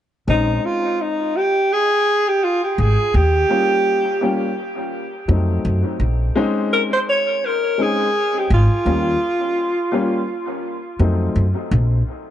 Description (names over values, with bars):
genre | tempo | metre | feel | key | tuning
hip hop, jazz-hop | 84 BPM | 4/4 | swing 58% on 16ths | Bb dorian | A4 = 440 Hz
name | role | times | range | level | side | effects
mellow alto saxophone | melody | 0.3-10.6 s | Eb4 to Db5 | -18 LUFS | right 1 dB | dub echo
warm upright piano | accompaniment | 0.3-11.4 s | Gb3 to F4 | -23 LUFS | left 2 dB | dub echo
upright bass | bass | 0.3-12.0 s | Ab1 to Gb2 | -17 LUFS | equal | none
room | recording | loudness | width
light reverb, small room ambience | echo-heavy mix, nothing above 10.6 kHz | -16 LUFS | side -11 dB against mid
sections
0.3-12.3 A section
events
none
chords
0.3 Bbm11 (rootless); 3.1 Eb9; 5.3 F7b9; 6.0 Bbm11 (rootless); 8.9 Eb9; 11.0 F7b9; 11.7 N.C.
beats
| 0.29 1.00 1.72 2.43 | 3.15 3.86 4.57 5.29 | 6.00 6.72 7.43 8.14 | 8.86 9.57 10.29 11.00 | 11.72